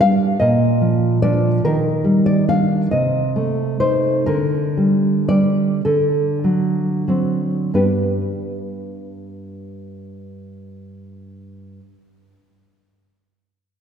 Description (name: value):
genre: romantic piece for solo classical guitar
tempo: 29-50 BPM (dotted quarters)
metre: 6/8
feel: rubato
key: unclear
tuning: A4 = 440 Hz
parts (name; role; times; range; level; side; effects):
- nylon-string guitar; solo; 0.0-11.8 s; G2 to F5; -16 LUFS; equal; none
room: wet concert hall reverb, RT60 2.2 s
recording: heard from further back in the room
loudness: -16 LUFS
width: side -7 dB against mid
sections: 0.0-7.8 A section; 7.8-11.4 B section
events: slowing down 0.4-7.8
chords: 0.4 Bb; 1.6 Ebmaj7; 2.9 Adim/C; 4.3 Gm/D; 5.8 D7; 7.8 G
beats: 0.39 | 1.63 2.91 | 4.28 5.85 | 7.75 9.59